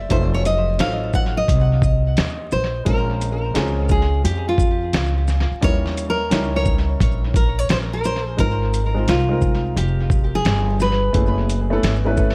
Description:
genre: hip hop, jazz-hop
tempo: 87 BPM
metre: 4/4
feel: swing 66% on 16ths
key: Ab major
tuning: A4 = 440 Hz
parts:
  - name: nylon-string guitar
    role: melody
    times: 0.0-12.1 s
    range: F4 to Gb5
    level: -26 LUFS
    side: equal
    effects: tape echo
  - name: upright bass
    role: bass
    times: 0.0-12.3 s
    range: F1 to F2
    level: -23 LUFS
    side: equal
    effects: none
  - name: warm upright piano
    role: accompaniment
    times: 0.1-12.3 s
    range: Gb3 to Db5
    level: -28 LUFS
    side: equal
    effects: tape echo
  - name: dusty soul sampler-style drum kit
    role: drums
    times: 0.1-12.3 s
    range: hi-hat, kick drum, shaker, snare drum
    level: -24 LUFS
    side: equal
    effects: tape echo
room: little or no reverb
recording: echo-heavy mix, vinyl crackle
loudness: -19 LUFS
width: mono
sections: 0.0-8.4 A section; 8.4-12.3 B section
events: nylon-string guitar solo 0.0-8.4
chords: 0.1 F7b9; 2.9 Bbm9; 5.6 Eb7b9; 8.4 Ab69; 11.1 Gbm11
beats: | 0.11 0.80 1.49 2.18 | 2.87 3.56 4.25 4.94 | 5.63 6.32 7.00 7.70 | 8.38 9.07 9.76 10.45 | 11.14 11.83

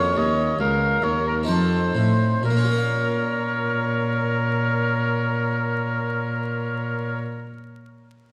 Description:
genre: classical, baroque-style sonata movement with continuo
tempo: 62 BPM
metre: 3/4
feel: straight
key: Bb minor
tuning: A4 = 444 Hz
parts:
  - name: dark violin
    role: melody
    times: 0.0-7.2 s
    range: A4 to Db5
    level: -32 LUFS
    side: equal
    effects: none
  - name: warm oboe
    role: second line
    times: 0.0-7.2 s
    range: Bb4 to F5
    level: -28 LUFS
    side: equal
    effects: none
  - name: harpsichord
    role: accompaniment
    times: 0.0-7.5 s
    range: Db2 to F5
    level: -29 LUFS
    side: equal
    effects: none
  - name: dark cello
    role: bass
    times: 0.0-7.2 s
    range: Db2 to Bb2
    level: -27 LUFS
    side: equal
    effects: none
room: wet concert hall reverb, RT60 2.1 s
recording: vinyl crackle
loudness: -23 LUFS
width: mono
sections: 0.0-2.4 A section; 2.4-8.3 B section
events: slowing down 0.0-2.4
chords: 0.0 Bbm; 1.5 F7; 2.4 Bbm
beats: 0.59 1.48 | 2.44 3.42 4.39 | 5.37 6.34 7.32

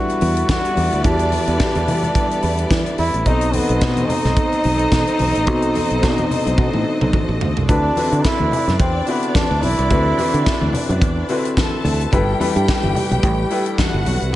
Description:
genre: disco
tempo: 108 BPM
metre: 4/4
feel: swing 56% on 16ths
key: unclear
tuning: A4 = 440 Hz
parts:
  - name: bright trombone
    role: melody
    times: 0.0-10.7 s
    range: B3 to F#4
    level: -21 LUFS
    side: equal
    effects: none
  - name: clear studio string section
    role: second line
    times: 0.0-14.3 s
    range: G3 to A5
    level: -25 LUFS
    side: right 1 dB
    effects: none
  - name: clear baby grand piano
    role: accompaniment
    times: 0.0-14.4 s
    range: B2 to B4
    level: -24 LUFS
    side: left 3 dB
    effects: none
  - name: warm French horn section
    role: sustained chords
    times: 0.0-14.4 s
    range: B2 to B4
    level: -28 LUFS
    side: equal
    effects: none
  - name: tight funk drum kit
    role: drums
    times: 0.1-14.3 s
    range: hi-hat, kick drum, snare drum, toms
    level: -21 LUFS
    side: equal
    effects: gated reverb
  - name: congas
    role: percussion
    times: 0.1-14.4 s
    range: none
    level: -28 LUFS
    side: left 2 dB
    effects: none
  - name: fingered electric bass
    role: bass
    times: 0.2-14.3 s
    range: G1 to E3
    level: -20 LUFS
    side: equal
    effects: none
room: light reverb, small room reverb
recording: nothing above 10.8 kHz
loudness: -15 LUFS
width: side -14 dB against mid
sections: 0.0-7.7 A section; 7.7-14.4 B section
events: drum fill 6.6-7.7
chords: 0.0 Em9; 3.3 B7b9; 7.7 D13; 12.1 G69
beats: 0.49 | 1.05 1.60 2.15 2.71 | 3.26 3.81 4.37 4.92 | 5.47 6.03 6.58 7.14 | 7.69 8.24 8.80 9.35 | 9.91 10.46 11.02 11.57 | 12.12 12.68 13.23 13.79 | 14.34

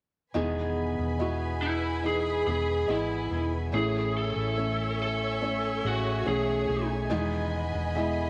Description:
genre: pop ballad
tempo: 71 BPM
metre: 4/4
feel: straight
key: E major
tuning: A4 = 440 Hz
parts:
  - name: felt-muted upright piano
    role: accompaniment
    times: 0.3-8.3 s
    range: A2 to D#5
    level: -34 LUFS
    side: equal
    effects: none
  - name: warm symphonic string section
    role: sustained chords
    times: 0.3-8.3 s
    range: B4 to B5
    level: -39 LUFS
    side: equal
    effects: none
  - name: fingerpicked steel-string acoustic guitar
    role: arpeggios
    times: 0.3-8.3 s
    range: E2 to G#4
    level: -40 LUFS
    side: equal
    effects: tape echo
  - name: hollow-body short-scale fingered electric bass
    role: bass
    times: 0.3-8.3 s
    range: E1 to B1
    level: -35 LUFS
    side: equal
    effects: none
  - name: lead guitar through a small cranked amp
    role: melody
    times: 1.6-6.9 s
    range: E4 to A4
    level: -32 LUFS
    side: equal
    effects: overdrive
room: wet spring reverb, RT60 2.3 s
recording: none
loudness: -29 LUFS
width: mono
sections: 0.3-8.3 A section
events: none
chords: 0.3 Emaj7; 3.7 Amaj7; 7.1 Emaj7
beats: | 0.35 1.20 2.04 2.88 | 3.73 4.58 5.42 6.27 | 7.11 7.96

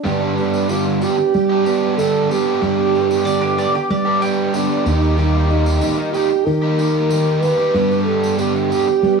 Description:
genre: folk rock and heartland rock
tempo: 94 BPM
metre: 4/4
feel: straight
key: unclear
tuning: A4 = 439 Hz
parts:
  - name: mellow French horn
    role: melody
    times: 0.0-9.2 s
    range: D4 to B4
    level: -19 LUFS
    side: right 5 dB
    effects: cassette tape, plate reverb
  - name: bright tonewheel organ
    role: sustained chords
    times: 0.0-9.2 s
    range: G3 to G4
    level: -34 LUFS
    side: right 4 dB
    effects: none
  - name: biting overdriven guitar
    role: riff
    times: 0.0-8.9 s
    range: G2 to G4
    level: -22 LUFS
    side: right 2 dB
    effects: none
  - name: picked plugged-in steel-string acoustic guitar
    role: accompaniment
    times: 0.1-9.2 s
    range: G2 to G4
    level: -25 LUFS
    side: left 6 dB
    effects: plate reverb
  - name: fingered electric bass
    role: bass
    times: 0.1-9.2 s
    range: Eb2 to G3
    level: -19 LUFS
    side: right 1 dB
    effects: none
  - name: tambourine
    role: percussion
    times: 0.1-9.1 s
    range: none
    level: -36 LUFS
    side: right 2 dB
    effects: none
  - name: bowl-back mandolin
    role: second line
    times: 3.2-4.5 s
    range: G4 to G5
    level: -20 LUFS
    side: right 1 dB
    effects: plate reverb
room: light reverb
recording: home recording on cassette, small room ambience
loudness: -15 LUFS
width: side -4 dB against mid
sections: 0.1-9.2 A section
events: none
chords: 0.1 G; 4.9 Eb; 7.7 G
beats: | 0.06 0.70 1.34 1.98 | 2.62 3.27 3.90 4.54 | 5.18 5.83 6.46 7.10 | 7.74 8.38 9.03

